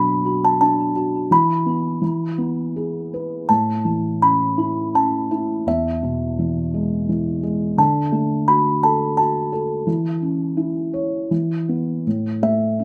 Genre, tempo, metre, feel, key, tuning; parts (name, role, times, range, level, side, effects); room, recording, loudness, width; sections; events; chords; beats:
children's music, lullaby; 84 BPM; 3/4; rubato; A major; A4 = 440 Hz
music box; melody; 0.0-12.8 s; E5 to B5; -21 LUFS; equal; plate reverb
felt-muted upright piano; accompaniment; 0.0-12.8 s; E2 to C#5; -23 LUFS; equal
moderate studio reverb, RT60 0.5 s; rough home demo mix; -20 LUFS; mono
0.0-12.1 A section
0.0 Bm7; 1.3 E5; 2.0 E; 3.5 A; 5.7 E; 7.8 D; 9.9 A/E; 11.3 E5; 12.1 A5
0.60 | 1.30 2.02 2.75 | 3.49 4.22 4.95 | 5.66 6.38 7.08 | 7.78 8.48 9.17 | 9.87 10.58 11.31 | 12.05 12.79